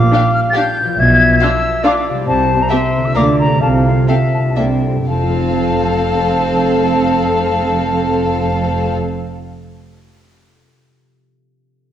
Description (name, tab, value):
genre	cinematic, playful, whimsical film cue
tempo	114-141 BPM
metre	3/4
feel	straight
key	F major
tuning	A4 = 438 Hz
part	clear clarinet	second line	0.0-4.8 s	C5 to F5	-20 LUFS	left 1 dB	none
part	silver concert flute	second line	0.0-8.9 s	F5 to A6	-18 LUFS	left 2 dB	none
part	concert harp	arpeggios	0.0-9.7 s	Bb2 to F5	-20 LUFS	left 3 dB	none
part	dark chamber double bass section	bass	0.0-8.9 s	F1 to D2	-20 LUFS	right 3 dB	none
part	warm chamber cello section	bass	0.0-8.9 s	F2 to D3	-19 LUFS	right 3 dB	none
part	warm chamber violin section	melody	0.1-8.9 s	E5 to F5	-24 LUFS	left 4 dB	none
part	warm symphonic violin section	second line	0.1-8.9 s	F4 to Bb4	-22 LUFS	left 3 dB	none
part	rich chamber viola section	accompaniment	0.1-8.9 s	Bb3 to D4	-21 LUFS	right 3 dB	none
room	wet scoring stage reverb, RT60 1.7 s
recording	worn, warbling old tape, cassette tape, warbly pitch drift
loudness	-12 LUFS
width	side -10 dB against mid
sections	0.0-5.1 A section; 5.1-8.2 B section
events	slowing down 1.6-5.1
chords	0.0 Gm7/Bb; 1.0 Bdim7; 2.3 C; 3.2 Bb/D; 3.6 F/C; 4.6 C13; 5.1 F